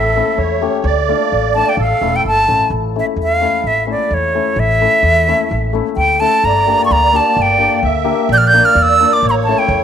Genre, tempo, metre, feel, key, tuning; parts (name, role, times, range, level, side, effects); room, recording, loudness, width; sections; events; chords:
klezmer; 129 BPM; 2/4; straight; A phrygian dominant; A4 = 439 Hz
bright silver concert flute; melody; 0.0-9.8 s; C#5 to G6; -13 LUFS; right 1 dB
musette accordion; second line; 0.0-2.4, 6.4-9.8 s; A4 to E5; -19 LUFS; right 12 dB
upright bass; bass; 0.0-9.8 s; E1 to E2; -19 LUFS; right 1 dB
cimbalom; accompaniment; 0.2-9.6 s; A3 to G4; -19 LUFS; left 12 dB
light reverb, studio reverb; 1960s-style stereo with parts hard left and right; -11 LUFS; side -8 dB against mid
0.0-2.7 A section; 2.7-9.8 B section
flute solo 2.7-9.8
0.0 A; 0.8 Dm; 1.8 A; 6.4 Gm; 8.3 Bb; 9.2 A